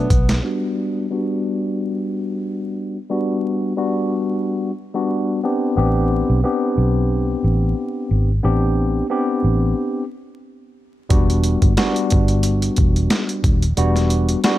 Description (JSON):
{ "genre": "hip hop, boom-bap hip-hop", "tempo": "90 BPM", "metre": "4/4", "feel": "swing 56% on 16ths", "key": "unclear", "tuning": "A4 = 440 Hz", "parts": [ { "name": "tine electric piano", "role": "accompaniment", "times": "0.0-14.6 s", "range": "G3 to G4", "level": "-20 LUFS", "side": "left 1 dB", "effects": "medium stereo tremolo, cassette tape, high-pass filter, low-pass filter" }, { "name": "vintage muted fingered electric bass", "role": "bass", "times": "0.0-0.4, 5.8-14.3 s", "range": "D#1 to B1", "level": "-18 LUFS", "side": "equal", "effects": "none" }, { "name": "dusty soul sampler-style drum kit", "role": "drums", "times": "0.1-0.4, 11.1-14.6 s", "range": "hi-hat, kick drum, snare drum", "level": "-18 LUFS", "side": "equal", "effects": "overdrive" } ], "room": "little or no reverb", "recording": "vinyl crackle", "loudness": "-17 LUFS", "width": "side -14 dB against mid", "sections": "0.4-11.1 A section; 11.1-14.6 B section", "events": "drum fill 0.0-0.4; filter sweep on tine electric piano 0.4-11.1; stop 9.8-11.1", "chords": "0.4 Gmaj7; 5.4 Am11; 11.1 Em7", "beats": "| 0.44 1.10 1.77 2.44 | 3.10 3.77 4.44 5.11 | 5.77 6.44 7.11 7.77 | 8.44 9.11 9.77 10.44 | 11.11 11.77 12.44 13.11 | 13.77 14.44" }